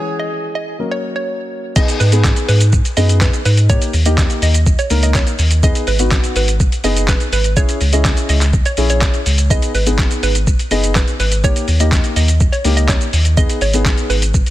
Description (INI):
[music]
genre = dance-pop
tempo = 124 BPM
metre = 4/4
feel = straight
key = G# minor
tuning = A4 = 443 Hz
[part]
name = direct-recorded clean electric guitar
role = melody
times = 0.0-0.8 s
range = G#4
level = -27 LUFS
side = right 1 dB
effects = wide subtle chorus, tape echo
[part]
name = dark baby grand piano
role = accompaniment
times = 0.0-14.2 s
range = E3 to A#4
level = -22 LUFS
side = left 2 dB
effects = sidechain pumping
[part]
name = hollow square pluck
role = melody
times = 0.2-14.2 s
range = B4 to D#5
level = -22 LUFS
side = right 3 dB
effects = chorus, tape echo
[part]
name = lo-fi sampler-style drum kit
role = drums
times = 1.8-14.5 s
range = crash cymbal, handclaps, hi-hat, kick drum, shaker, snare drum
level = -16 LUFS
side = equal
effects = none
[part]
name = warm sub bass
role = bass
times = 2.0-14.4 s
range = F#1 to G#2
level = -14 LUFS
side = equal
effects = sidechain pumping
[sound]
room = digital ambience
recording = dense, heavily limited modern master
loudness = -12 LUFS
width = side -15 dB against mid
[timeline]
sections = 0.0-1.8 A section; 1.8-14.5 B section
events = filter sweep 0.0-1.8; drop 1.8-14.5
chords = 0.0 C#m; 0.8 F#; 1.8 G#m; 3.7 D#; 5.6 G#m; 7.6 C#m; 9.5 G#m; 11.4 D#; 13.4 G#m